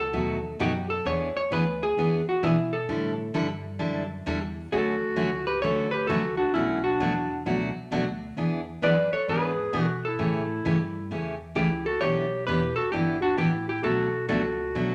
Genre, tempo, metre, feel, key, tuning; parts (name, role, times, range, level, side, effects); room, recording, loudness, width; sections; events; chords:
country, western swing; 131 BPM; 4/4; swing 65% on 8ths; A4 = 440 Hz
vintage hollow-body jazz guitar; melody; 0.0-14.9 s; E4 to D5; -30 LUFS; equal
upright bass; bass; 0.0-14.9 s; E1 to B2; -39 LUFS; equal
picked steel-string acoustic guitar; accompaniment; 0.1-14.9 s; B2 to A4; -30 LUFS; equal
growling clarinet; second line; 4.7-14.9 s; C#4 to B4; -32 LUFS; equal
moderate large studio reverb, RT60 1.1 s; -27 LUFS; mono
0.0-14.9 A section
0.0 B7; 1.1 E7; 2.9 A7sus4; 4.7 Dmaj7; 6.5 Bm11; 8.4 E7; 10.2 A7; 12.0 Em7; 13.8 Bm7